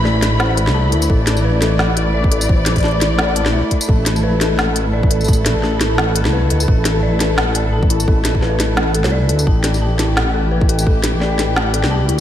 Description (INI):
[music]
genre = half-time drum and bass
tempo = 172 BPM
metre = 4/4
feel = swing 56% on 16ths, half-time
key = unclear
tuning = A4 = 440 Hz
[part]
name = dark studio string section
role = sustained chords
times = 0.0-12.2 s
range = A3 to B5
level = -22 LUFS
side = equal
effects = sidechain pumping
[part]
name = dark detuned synth bell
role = arpeggios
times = 0.0-12.2 s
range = E4 to A5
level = -22 LUFS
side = left 2 dB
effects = chorus, ping-pong delay
[part]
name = deep soft wobble bass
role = bass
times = 0.0-12.2 s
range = A1 to D2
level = -17 LUFS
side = equal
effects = chorus
[part]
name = organic electronic drum kit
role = drums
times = 0.1-12.2 s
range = hi-hat, snare drum, tambourine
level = -20 LUFS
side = equal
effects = none
[part]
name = electronic kick drum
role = drums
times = 1.1-10.9 s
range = none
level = -14 LUFS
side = equal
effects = none
[sound]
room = moderate lush hall reverb, RT60 1.9 s, digital ambience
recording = dreamy mix soaked in reverb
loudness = -13 LUFS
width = side -11 dB against mid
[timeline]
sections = 0.0-12.2 A section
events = none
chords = 0.0 Amadd9